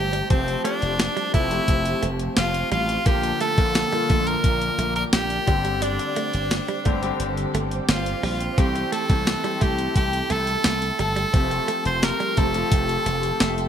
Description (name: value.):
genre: 1980s-style pop.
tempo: 87 BPM.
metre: 4/4.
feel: straight.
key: unclear.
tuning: A4 = 439 Hz.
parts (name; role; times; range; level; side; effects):
edgy tenor saxophone; melody; 0.0-13.7 s; C4 to C5; -25 LUFS; equal; digital delay.
shimmering bell with halo; second line; 0.0-13.7 s; C5 to C6; -34 LUFS; equal; none.
warm concert grand piano; accompaniment; 0.0-13.7 s; D3 to E5; -29 LUFS; left 4 dB; lush chorus.
ethereal airy pad; sustained chords; 0.0-13.7 s; Bb3 to D6; -33 LUFS; right 1 dB; ensemble chorus, built-in reverb.
direct-recorded clean electric guitar; riff; 0.0-13.2 s; G3 to C4; -33 LUFS; right 6 dB; lush chorus, digital delay.
glassy slap bass; bass; 0.0-13.7 s; F1 to C2; -27 LUFS; equal; none.
clean 12-bit digital drum machine; drums; 0.1-13.7 s; hi-hat, kick drum, snare drum, tambourine; -23 LUFS; equal; none.
room: light reverb, digital ambience.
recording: bright 1980s-style digital production.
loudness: -20 LUFS.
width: side -9 dB against mid.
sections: 0.0-13.7 A section.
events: grand piano fill 13.1-13.7.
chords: 0.3 Fadd9; 3.1 Bb; 5.5 Gsus4; 8.6 C6; 11.3 Fadd9.